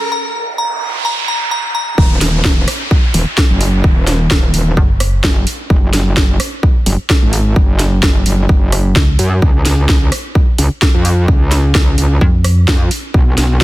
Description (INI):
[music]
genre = bass house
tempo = 129 BPM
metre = 4/4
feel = swing 54% on 16ths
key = Eb minor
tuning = A4 = 444 Hz
[part]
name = riser, noise sweep and downlifter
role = sound effects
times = 0.0-5.7 s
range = none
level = -22 LUFS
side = right 3 dB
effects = none
[part]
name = glassy synth bell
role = melody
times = 0.1-1.8 s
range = Bb5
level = -18 LUFS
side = equal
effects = chorus, digital delay
[part]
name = metallic wobble bass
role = bass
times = 2.0-13.6 s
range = Eb1 to Gb2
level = -13 LUFS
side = equal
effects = chorus, overdrive, sidechain pumping
[part]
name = electronic kick drum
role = drums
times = 2.0-13.6 s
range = none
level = -12 LUFS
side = equal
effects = overdrive, studio reverb
[part]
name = garage drum kit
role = drums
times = 2.2-13.6 s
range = hi-hat, rim click, snare drum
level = -18 LUFS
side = equal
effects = overdrive, high-pass filter on snare, studio reverb, high-pass filter on hats
[part]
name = metallic FM bass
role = bass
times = 4.8-5.2, 9.0-9.2, 12.2-12.7 s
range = Gb1 to F2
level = -12 LUFS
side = equal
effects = overdrive, sidechain pumping
[sound]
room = little or no reverb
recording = dense, heavily limited modern master, high-pass filter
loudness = -10 LUFS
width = side -17 dB against mid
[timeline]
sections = 0.0-2.0 A section; 2.0-13.6 B section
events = build-up 0.0-2.0; noise sweep 0.1-2.0; drop 2.0-13.6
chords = 0.0 Gbsus2; 2.0 Ebm; 5.7 N.C.; 9.4 Db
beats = | 0.12 0.58 1.05 1.51 | 1.98 2.44 2.91 3.38 | 3.84 4.31 4.77 5.24 | 5.70 6.17 6.63 7.10 | 7.56 8.03 8.49 8.96 | 9.42 9.89 10.35 10.82 | 11.28 11.75 12.21 12.68 | 13.14 13.61